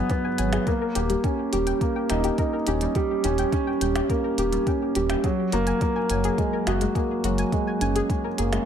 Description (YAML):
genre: piano and strings electronica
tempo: 105 BPM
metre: 4/4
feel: straight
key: unclear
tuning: A4 = 440 Hz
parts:
  - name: soft round pluck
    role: arpeggios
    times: 0.0-8.6 s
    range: G3 to G#5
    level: -31 LUFS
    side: left 6 dB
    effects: chorus, sidechain pumping, ping-pong delay
  - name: felt-muted upright piano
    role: riff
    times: 0.0-8.7 s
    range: F#3 to G4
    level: -24 LUFS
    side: right 2 dB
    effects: ping-pong delay
  - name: electronic hi-hat and percussion blips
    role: drums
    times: 0.1-8.6 s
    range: none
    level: -34 LUFS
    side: right 2 dB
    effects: none
  - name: electronic kick drum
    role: drums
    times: 0.1-8.2 s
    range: none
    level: -27 LUFS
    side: equal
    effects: none
  - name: round analog bass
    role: bass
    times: 0.4-8.6 s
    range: D#1 to G#1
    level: -27 LUFS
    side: equal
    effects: sidechain pumping
room: light reverb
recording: none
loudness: -22 LUFS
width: side -8 dB against mid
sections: 0.0-8.7 A section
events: none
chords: 0.0 G#m7; 0.7 D#7; 5.2 F#add9